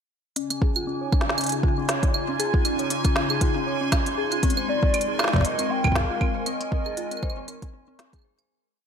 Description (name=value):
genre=IDM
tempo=118 BPM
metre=4/4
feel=swing 56% on 16ths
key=Db major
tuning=A4 = 439 Hz
part: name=hollow soft pad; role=sustained chords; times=0.4-8.5 s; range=Db3 to C6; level=-30 LUFS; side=equal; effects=ensemble chorus
part: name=dark detuned synth bell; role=arpeggios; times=0.4-8.4 s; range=C4 to Db5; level=-30 LUFS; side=left 4 dB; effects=chorus, phaser, low-pass filter, ping-pong delay
part: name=organic electronic drum kit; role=drums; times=0.4-8.5 s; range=claves, hi-hat, snare drum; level=-28 LUFS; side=right 2 dB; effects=overdrive
part: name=bubbling stepped-filter texture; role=texture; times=0.5-8.5 s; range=Ab5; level=-33 LUFS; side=right 6 dB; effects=chorus, built-in reverb, sidechain pumping
part: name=electronic kick drum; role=drums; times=0.6-8.2 s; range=none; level=-23 LUFS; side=equal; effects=overdrive
part: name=warbly nostalgic lead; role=melody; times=4.7-8.0 s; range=D5 to G5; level=-29 LUFS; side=equal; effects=chorus, cassette tape, ping-pong delay
room=light reverb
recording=none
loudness=-21 LUFS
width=side -7 dB against mid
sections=0.4-8.5 groove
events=filter sweep on synth bell 0.4-8.5; fade-out 5.8-8.5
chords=0.4 Dbmaj9; 4.4 Abadd9